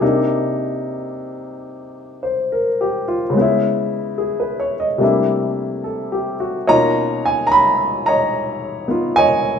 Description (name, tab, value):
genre	solo jazz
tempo	72 BPM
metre	4/4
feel	swing 66% on 8ths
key	unclear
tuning	A4 = 440 Hz
part	warm baby grand piano	solo	0.0-9.6 s	B2 to B5	-16 LUFS	left 1 dB	none
room	wet large studio reverb, RT60 1.3 s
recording	band playing live in one room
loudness	-16 LUFS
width	side -7 dB against mid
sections	0.0-9.6 A section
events	none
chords	0.0 Cm9; 3.3 Dbm7; 5.0 C13; 6.7 Bmaj9#11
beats	| 0.02 0.85 1.68 2.51 | 3.35 4.18 5.01 5.84 | 6.67 7.50 8.33 9.16